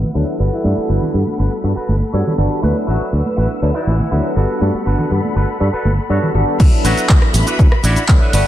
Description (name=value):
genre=filtered disco house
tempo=121 BPM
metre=4/4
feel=straight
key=D major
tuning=A4 = 439 Hz
part: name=clear studio string section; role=sustained chords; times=0.0-8.5 s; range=F#4 to E6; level=-27 LUFS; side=left 2 dB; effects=sidechain pumping, low-pass filter
part: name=modern bright fingered electric bass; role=bass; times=0.0-8.4 s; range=G1 to G2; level=-16 LUFS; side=equal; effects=sidechain pumping, low-pass filter
part: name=tube shaker and congas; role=percussion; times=0.0-6.6 s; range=none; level=-24 LUFS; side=right 2 dB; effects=sidechain pumping on perc, low-pass filter on perc
part: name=barky tine electric piano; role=accompaniment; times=0.1-8.5 s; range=F#3 to A4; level=-21 LUFS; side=equal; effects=phaser, vintage 12-bit sampler grit, sidechain pumping, low-pass filter
part: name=electric guitar with an envelope filter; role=riff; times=0.1-8.5 s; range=D4 to A5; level=-25 LUFS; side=right 1 dB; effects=vintage 12-bit sampler grit, sidechain pumping, low-pass filter
part: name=clear horn section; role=melody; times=0.5-7.0 s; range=E3 to F#4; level=-27 LUFS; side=equal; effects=sidechain pumping, low-pass filter, ping-pong delay
part: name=electronic kick drum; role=drums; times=6.6-8.2 s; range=none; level=-11 LUFS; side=equal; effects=none
part: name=punchy analog drum machine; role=drums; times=6.6-8.4 s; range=crash cymbal, handclaps, hi-hat, rim click, shaker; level=-21 LUFS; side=equal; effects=sidechain pumping on hats, low-pass filter on hats, low-pass filter on snare, sidechain pumping on cymbals, low-pass filter on cymbals, sidechain pumping on perc, low-pass filter on perc, low-pass filter on room
room=light reverb, digital ambience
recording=none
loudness=-13 LUFS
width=side -12 dB against mid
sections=0.0-6.6 A section; 6.6-8.5 B section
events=filter sweep 0.0-6.6; clean electric guitar fill 1.9-2.6; drop 6.6-8.5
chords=0.4 Gmaj9; 2.6 D69; 4.4 Gmaj9; 6.6 D69